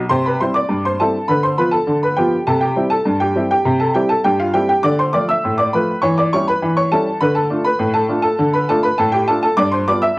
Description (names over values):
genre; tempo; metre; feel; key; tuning
ragtime piano; 101 BPM; 2/4; straight; C major; A4 = 440 Hz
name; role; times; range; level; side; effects
clear upright piano; solo; 0.0-10.2 s; G2 to E6; -14 LUFS; equal; analog delay
room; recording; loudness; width
moderate studio reverb, RT60 0.5 s; home recording on cassette; -14 LUFS; side -23 dB against mid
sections
0.1-10.2 A section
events
none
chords
0.1 C; 1.3 Bdim/D; 2.5 C; 4.8 Dm; 6.0 C#dim/E; 7.2 Dm; 9.6 G7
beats
| 0.09 0.69 | 1.28 1.87 | 2.47 3.06 | 3.65 4.25 | 4.84 5.43 | 6.03 6.62 | 7.21 7.80 | 8.39 8.98 | 9.57 10.16